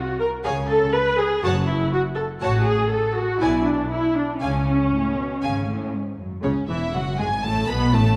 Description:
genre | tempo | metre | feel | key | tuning
quick classical-period movement for string orchestra | 121 BPM | 4/4 | straight | F# minor | A4 = 440 Hz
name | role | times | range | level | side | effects
rich studio viola section | accompaniment | 0.0-8.2 s | C#3 to B4 | -25 LUFS | equal | none
rich studio violin section | melody | 0.5-8.2 s | C#5 to B5 | -32 LUFS | equal | none
rich studio violin section | second line | 0.5-8.2 s | C#4 to G#5 | -34 LUFS | equal | none
dark studio double bass section | bass | 0.5-8.2 s | E1 to C#2 | -28 LUFS | equal | none
warm studio cello section | bass | 0.5-8.2 s | C#2 to C#3 | -31 LUFS | equal | none
room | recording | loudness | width
moderate concert hall reverb, RT60 2.0 s | none | -22 LUFS | mono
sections
0.0-6.4 A section; 6.4-8.2 B section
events
none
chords
0.5 C#; 1.4 F#m; 2.4 F#m/A; 3.4 G#dim/B; 4.4 C#; 6.4 F#m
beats
| 0.46 0.95 1.44 1.93 | 2.42 2.92 3.41 3.91 | 4.41 4.92 5.43 5.94 | 6.44 6.94 7.44 7.94

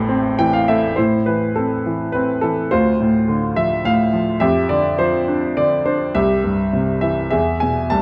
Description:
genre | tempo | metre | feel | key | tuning
classical, lyrical solo piano | 103 BPM | 3/4 | rubato | A minor | A4 = 442 Hz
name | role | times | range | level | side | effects
clear grand piano | solo | 0.0-8.0 s | A1 to A5 | -18 LUFS | equal | none
room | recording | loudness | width
moderate recital hall reverb, RT60 1.3 s | dark, warm production | -18 LUFS | mono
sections
1.0-8.0 A section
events
grand piano fill 0.1-1.0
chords
0.0 Am; 2.7 Dm7; 4.4 Dm11/F; 6.1 C; 7.3 E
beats
0.38 | 0.97 1.56 2.14 | 2.71 3.28 3.85 | 4.41 4.98 5.56 | 6.14 6.73 7.32 | 7.91

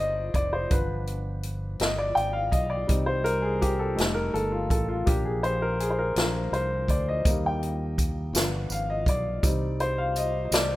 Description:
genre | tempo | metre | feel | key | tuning
slow gospel | 55 BPM (dotted quarters) | 6/8 | straight | unclear | A4 = 439 Hz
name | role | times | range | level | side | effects
warm upright piano | accompaniment | 0.0-10.8 s | F3 to G5 | -27 LUFS | left 1 dB | none
fingered electric bass | bass | 0.0-10.8 s | F1 to Eb2 | -30 LUFS | equal | none
swinging big-band drum kit | drums | 0.3-10.7 s | hi-hat, kick drum, snare drum | -27 LUFS | equal | none
tambourine | percussion | 7.3-10.8 s | none | -34 LUFS | right 3 dB | none
room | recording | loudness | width
light reverb, studio ambience | rough home demo mix | -24 LUFS | side -16 dB against mid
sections
0.0-10.8 A section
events
upright piano solo 0.0-10.8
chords
0.0 Eb; 0.7 G7; 2.9 Cm; 4.0 F7; 5.1 Bb; 7.3 Eb; 8.3 G7; 9.4 Cm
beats
| 0.71 1.81 | 2.90 3.99 | 5.08 6.17 | 7.26 8.35 | 9.44 10.52

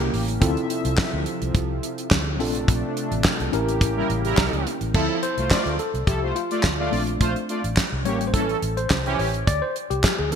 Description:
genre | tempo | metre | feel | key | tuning
early-eighties boogie funk | 106 BPM | 4/4 | straight | D minor | A4 = 440 Hz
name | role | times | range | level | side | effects
tine electric piano | accompaniment | 0.0-10.4 s | F3 to D5 | -27 LUFS | left 3 dB | overdrive, fast stereo tremolo
chorused pulse-width pad | sustained chords | 0.0-4.9 s | C3 to E5 | -30 LUFS | right 2 dB | none
vintage muted fingered electric bass | bass | 0.0-10.3 s | A1 to D2 | -27 LUFS | equal | none
damped 70s drum kit | drums | 0.0-10.4 s | crash cymbal, handclaps, hi-hat, kick drum, snare drum | -23 LUFS | equal | gated reverb
analog synth brass | second line | 4.0-9.3 s | E3 to D5 | -27 LUFS | right 2 dB | chorus
room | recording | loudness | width
moderate plate reverb, RT60 2.0 s | bright 1980s-style digital production | -20 LUFS | side -7 dB against mid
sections
0.0-4.9 A section; 4.9-10.4 B section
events
band accent 2.7-4.9; tine electric piano solo 4.9-10.4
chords
0.4 Dm9; 2.4 Bbmaj9; 3.5 A7b9; 4.9 Dm9; 6.9 Bbmaj9; 8.1 A7b9; 9.5 D7(no3)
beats
| 0.42 0.98 1.55 2.12 | 2.68 3.25 3.81 4.38 | 4.95 5.51 6.08 6.64 | 7.21 7.78 8.34 8.91 | 9.47 10.04

